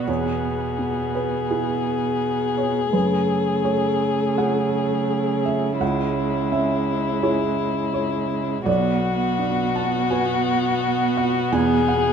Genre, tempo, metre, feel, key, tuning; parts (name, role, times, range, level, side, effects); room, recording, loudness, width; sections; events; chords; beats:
neoclassical piano and strings; 84 BPM; 4/4; rubato; F# minor; A4 = 440 Hz
muted violin; melody; 0.0-12.1 s; E4 to G#4; -24 LUFS; left 7 dB
muted cello; second line; 0.0-12.1 s; B2 to C#3; -26 LUFS; right 7 dB
felt-muted upright piano; accompaniment; 0.0-12.1 s; B1 to A5; -25 LUFS; right 2 dB
muted viola; accompaniment; 0.0-12.1 s; G#3 to B3; -27 LUFS; right 4 dB
light reverb; minimal, uncompressed stereo recording; -19 LUFS; side -7 dB against mid
0.0-12.1 A section
0.1 E; 2.9 F#madd9; 5.8 C#m; 8.7 Bm; 11.5 E
| 0.07 0.79 1.51 2.22 | 2.93 3.65 4.38 5.10 | 5.81 6.52 7.23 7.94 | 8.67 9.39 10.11 10.82 | 11.53